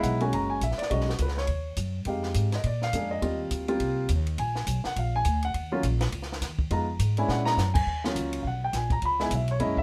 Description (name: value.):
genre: jazz, small-group swing and bop.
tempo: 207 BPM.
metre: 4/4.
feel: swing 59% on 8ths.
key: Eb minor.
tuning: A4 = 441 Hz.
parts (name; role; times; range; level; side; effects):
warm grand piano; accompaniment; 0.0-9.8 s; Gb3 to Cb6; -31 LUFS; equal; none.
upright bass; bass; 0.0-9.8 s; Gb1 to Bb2; -31 LUFS; equal; none.
compact cocktail drum kit; drums; 0.0-9.8 s; crash cymbal, hi-hat, kick drum, ride cymbal, snare drum; -35 LUFS; equal; none.
room: light reverb.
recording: none.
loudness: -28 LUFS.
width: mono.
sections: 0.0-7.9 A section; 7.9-9.8 A section.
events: drum fill 7.3.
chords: 0.3 Gb; 0.9 B69; 2.1 Fm7; 2.6 Bb7; 3.2 Eb69; 4.4 Bb7; 5.5 Ebm7; 6.7 Fm7b5; 7.3 Bb7alt; 7.9 Ebm7; 9.0 Dbm7.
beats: 0.03 0.32 0.61 | 0.90 1.19 1.48 1.77 | 2.06 2.35 2.64 2.93 | 3.22 3.51 3.80 4.09 | 4.38 4.67 4.96 5.25 | 5.54 5.83 6.12 6.41 | 6.70 6.99 7.28 7.57 | 7.86 8.15 8.44 8.73 | 9.02 9.31 9.60.